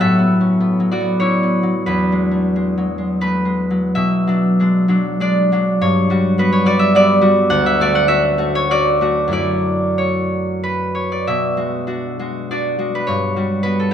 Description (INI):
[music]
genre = classical, solo harp piece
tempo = 76-106 BPM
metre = 3/4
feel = rubato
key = B minor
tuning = A4 = 441 Hz
[part]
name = concert harp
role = solo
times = 0.0-13.9 s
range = D2 to B5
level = -14 LUFS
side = equal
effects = none
[sound]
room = light reverb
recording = none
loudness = -14 LUFS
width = side -9 dB against mid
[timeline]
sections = 0.0-4.0 A section; 4.0-13.9 B section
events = none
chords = 0.0 A69; 1.9 E9; 4.0 Bm6; 5.8 Gmaj7; 7.5 Dmaj7; 9.4 F#m7; 11.3 Bm6; 13.1 Gmaj7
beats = | 0.02 0.61 1.22 | 1.88 2.56 3.22 | 3.95 4.59 5.19 | 5.79 6.38 6.95 | 7.53 8.11 8.72 | 9.36 10.00 10.64 | 11.29 11.90 12.50 | 13.08 13.64